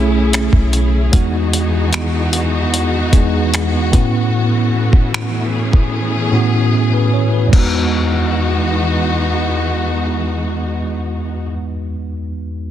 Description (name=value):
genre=contemporary R&B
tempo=75 BPM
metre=4/4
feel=straight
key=E major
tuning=A4 = 438 Hz
part: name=bell-like tine electric piano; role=accompaniment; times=0.0-12.7 s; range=E2 to C#5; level=-16 LUFS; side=equal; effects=medium stereo tremolo
part: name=warm studio string section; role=sustained chords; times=0.0-11.5 s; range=C#3 to G#4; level=-21 LUFS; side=left 1 dB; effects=none
part: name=clean 808-style bass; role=bass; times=0.0-1.1 s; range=B1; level=-15 LUFS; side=equal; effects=none
part: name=dusty soul sampler-style drum kit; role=drums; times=0.3-7.7 s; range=crash cymbal, finger snaps, hi-hat, kick drum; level=-15 LUFS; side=equal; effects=soft clipping on snare
room=light reverb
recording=dense, heavily limited modern master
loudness=-14 LUFS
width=side -11 dB against mid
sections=0.0-7.5 A section; 7.5-10.7 B section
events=drums muted 5.9-7.5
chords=0.0 B13sus4; 1.1 Emaj9; 3.9 A69; 7.5 Emaj9